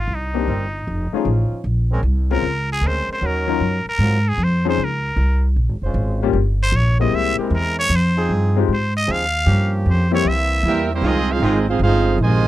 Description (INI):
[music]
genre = jazz, big band swing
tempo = 154 BPM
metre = 4/4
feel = swing 67% on 8ths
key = F minor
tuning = A4 = 440 Hz
[part]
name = trumpet with straight mute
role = melody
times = 0.0-10.9 s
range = Eb4 to F5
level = -22 LUFS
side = equal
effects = none
[part]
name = upright bass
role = bass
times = 0.0-12.5 s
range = F1 to Ab2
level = -18 LUFS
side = equal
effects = none
[part]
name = clear grand piano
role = accompaniment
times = 0.3-10.2 s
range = F3 to Bb4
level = -21 LUFS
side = left 14 dB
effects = none
[part]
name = clear trombone section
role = sustained chords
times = 0.5-11.6 s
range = Eb3 to C5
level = -26 LUFS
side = right 1 dB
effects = none
[part]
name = bright trumpet section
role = melody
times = 10.7-12.5 s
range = Bb3 to Ab5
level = -22 LUFS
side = right 3 dB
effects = none
[part]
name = bright trombone section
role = second line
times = 10.7-12.5 s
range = C3 to F4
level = -20 LUFS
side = right 4 dB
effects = none
[sound]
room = little or no reverb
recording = dry, close 1970s-style studio recording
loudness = -16 LUFS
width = side -14 dB against mid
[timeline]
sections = 0.0-11.0 A section; 11.0-12.5 B section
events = muted trumpet solo 0.0-11.0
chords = 0.1 Cm7; 0.9 F7alt; 1.7 Bbm9; 3.2 Ebm7; 4.0 Ab13; 4.8 Dbmaj7; 6.3 Eb13b9/G (rootless); 7.1 C7b13; 7.9 Fm7; 9.5 Gm7b5; 10.2 C7; 11.0 Fm7